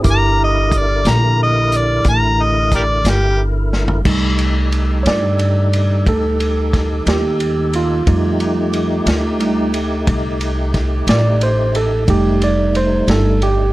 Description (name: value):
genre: slow blues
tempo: 60 BPM (dotted quarters)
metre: 12/8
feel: straight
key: F mixolydian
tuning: A4 = 440 Hz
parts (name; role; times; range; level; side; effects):
- barky tine electric piano; accompaniment; 0.0-13.7 s; G3 to D6; -19 LUFS; right 3 dB; overdrive
- tonewheel organ; sustained chords; 0.0-13.7 s; D3 to Bb4; -23 LUFS; equal; overdrive, chorus vibrato, slow rotary speaker
- upright bass; bass; 0.0-13.7 s; F1 to G2; -17 LUFS; equal; none
- vintage drum kit; drums; 0.0-13.6 s; crash cymbal, hi-hat, kick drum, ride cymbal, snare drum, toms; -21 LUFS; equal; none
- overdriven harmonica; melody; 0.1-3.4 s; G4 to Bb5; -16 LUFS; equal; none
room: little or no reverb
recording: none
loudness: -13 LUFS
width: side -17 dB against mid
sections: 0.0-4.1 A section; 4.1-13.7 A section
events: harmonica solo 0.0-4.1; drum fill 3.7-4.1; tine electric piano solo 4.1-13.7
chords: 0.0 Gm69; 4.1 F9